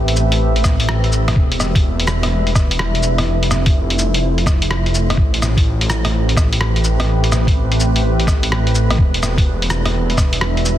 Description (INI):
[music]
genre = future garage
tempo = 126 BPM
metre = 4/4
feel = swing 65% on 16ths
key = A minor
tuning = A4 = 439 Hz
[part]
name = deep dark ambient pad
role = sustained chords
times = 0.0-10.8 s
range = G3 to E5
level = -22 LUFS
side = right 1 dB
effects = chorus, built-in reverb, sidechain pumping
[part]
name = swelling detuned saw bass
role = bass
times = 0.0-10.8 s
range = E1 to A1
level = -17 LUFS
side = equal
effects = sidechain pumping
[part]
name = lo-fi sampler-style drum kit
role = drums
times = 0.1-10.8 s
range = cabasa, hi-hat, rim click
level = -20 LUFS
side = equal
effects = soft clipping on snare
[part]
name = electronic kick drum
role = drums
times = 0.6-10.3 s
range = none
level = -15 LUFS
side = equal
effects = none
[sound]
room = light reverb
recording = dense, heavily limited modern master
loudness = -14 LUFS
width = side -12 dB against mid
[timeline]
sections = 0.0-10.8 A section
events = none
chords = 0.0 Am9; 1.4 Em7; 3.3 Fmaj7; 5.2 Am9; 9.0 Em7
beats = 0.41 0.89 | 1.36 1.84 2.31 2.79 | 3.27 3.74 4.22 4.70 | 5.17 5.65 6.12 6.60 | 7.08 7.55 8.03 8.50 | 8.98 9.46 9.93 10.41